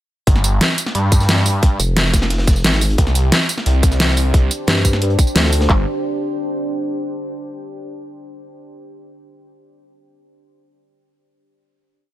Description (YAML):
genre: dark technical drum and bass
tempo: 177 BPM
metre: 4/4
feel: straight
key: unclear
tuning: A4 = 440 Hz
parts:
  - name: phased detuned saw bass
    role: bass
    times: 0.3-5.9 s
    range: G1 to G2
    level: -16 LUFS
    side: equal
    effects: phaser, overdrive
  - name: crunchy breakbeat drum kit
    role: drums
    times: 0.3-5.7 s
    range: hi-hat, snare drum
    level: -30 LUFS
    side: equal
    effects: none
  - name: drum and bass drum kit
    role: drums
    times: 0.3-5.8 s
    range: handclaps, kick drum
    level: -14 LUFS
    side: equal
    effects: none
  - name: dubstep drum kit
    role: drums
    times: 0.3-5.6 s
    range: hi-hat, snare drum, tambourine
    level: -17 LUFS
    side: equal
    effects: overdrive
  - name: vowel-sweep wobble bass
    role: bass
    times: 1.8-5.7 s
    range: F1 to G2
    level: -17 LUFS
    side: equal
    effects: chorus
  - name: deep dark ambient pad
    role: sustained chords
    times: 4.1-5.9 s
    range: D4 to C5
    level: -25 LUFS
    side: equal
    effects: chorus, built-in reverb, sidechain pumping
room: little or no reverb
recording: none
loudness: -14 LUFS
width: side -14 dB against mid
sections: 0.3-5.7 drop; 5.7-7.1 final chord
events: drop 0.3-5.7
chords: 0.3 Fmadd9; 3.0 Csus2; 5.7 Gm